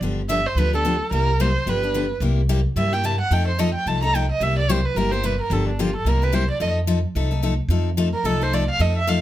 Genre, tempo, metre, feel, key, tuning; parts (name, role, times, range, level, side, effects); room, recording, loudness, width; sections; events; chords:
acoustic string swing (jazz manouche); 219 BPM; 4/4; swing 58% on 8ths; A4 = 440 Hz
picked steel-string acoustic guitar; accompaniment; 0.0-9.2 s; C3 to A4; -24 LUFS; left 4 dB
upright bass; bass; 0.0-9.2 s; G1 to G2; -22 LUFS; equal
dark erhu; melody; 0.3-9.2 s; D4 to Bb5; -23 LUFS; right 3 dB
light reverb; -19 LUFS; side -13 dB against mid
0.0-2.2 A section; 2.2-9.2 B section
erhu solo 2.2-9.2
0.0 G7; 1.1 C7; 1.7 G7; 2.2 C7; 3.3 F7; 4.4 C7; 5.5 Gm7; 6.1 C7; 6.6 F7